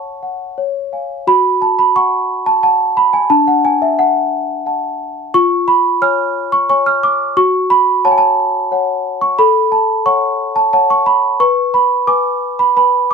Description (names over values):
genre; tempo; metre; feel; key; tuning
classical, lullaby for celesta; 89 BPM; 3/4; straight; F# minor; A4 = 441 Hz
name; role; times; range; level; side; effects
celesta; solo; 0.0-13.1 s; D4 to E#6; -12 LUFS; right 1 dB; none
room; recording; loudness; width
light reverb; none; -11 LUFS; side -5 dB against mid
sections
0.0-1.3 A section; 1.3-13.1 B section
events
none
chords
0.0 F#m/C#; 0.6 C#; 1.3 F#m; 3.3 D; 5.3 C#/E#; 7.4 F#m; 9.4 F#m/A; 11.4 Bm69